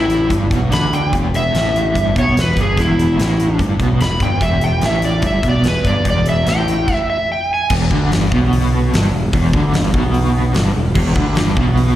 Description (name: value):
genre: blues rock power trio and southern rock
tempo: 146 BPM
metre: 4/4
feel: straight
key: unclear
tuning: A4 = 440 Hz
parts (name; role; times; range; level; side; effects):
- overdriven slide guitar; melody; 0.0-7.7 s; E4 to B5; -18 LUFS; equal; slapback echo
- overdriven semi-hollow guitar; riff; 0.0-12.0 s; E2 to D3; -19 LUFS; right 1 dB; tremolo, slapback echo
- growling picked electric bass; bass; 0.0-12.0 s; E1 to D2; -17 LUFS; equal; overdrive
- huge arena drum kit; drums; 0.1-11.9 s; crash cymbal, hi-hat, kick drum, snare drum; -20 LUFS; equal; none
room: little or no reverb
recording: live gig heard through the venue's PA, recital hall reverb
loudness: -13 LUFS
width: side -13 dB against mid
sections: 0.0-7.7 A section; 7.7-12.0 B section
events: stop 6.9-7.7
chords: 0.0 E5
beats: 0.30 0.72 | 1.13 1.54 1.95 2.36 | 2.77 3.18 3.59 4.00 | 4.42 4.83 5.24 5.65 | 6.06 6.47 6.88 7.29 | 7.70 8.11 8.52 8.93 | 9.34 9.74 10.15 10.56 | 10.97 11.38 11.79